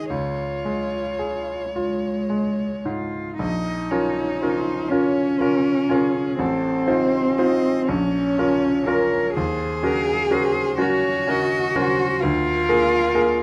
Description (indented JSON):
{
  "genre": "classical, slow romantic movement for piano trio",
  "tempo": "35-43 BPM (dotted quarters)",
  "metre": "6/8",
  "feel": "rubato",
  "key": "Db major, Bb minor from 3.4 s",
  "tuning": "A4 = 445 Hz",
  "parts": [
    { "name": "rich violin", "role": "melody", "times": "0.0-13.4 s", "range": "Ab4 to Eb5", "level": "-32 LUFS", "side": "equal", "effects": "none" },
    { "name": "rich cello", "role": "second line", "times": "0.0-13.4 s", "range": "Ab3 to Bb4", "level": "-25 LUFS", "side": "equal", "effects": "none" },
    { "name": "bright grand piano", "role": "accompaniment", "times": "0.0-13.4 s", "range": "A1 to C5", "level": "-25 LUFS", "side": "equal", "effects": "none" }
  ],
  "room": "moderate small room reverb, RT60 0.6 s",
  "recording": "dark, warm production",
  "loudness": "-22 LUFS",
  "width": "mono",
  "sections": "0.0-3.4 A section; 3.4-13.4 B section",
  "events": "none",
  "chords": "0.1 Db; 3.4 Bbm; 6.4 F7/A; 7.9 Bbm; 9.4 Ebm7; 12.2 Bb7/D"
}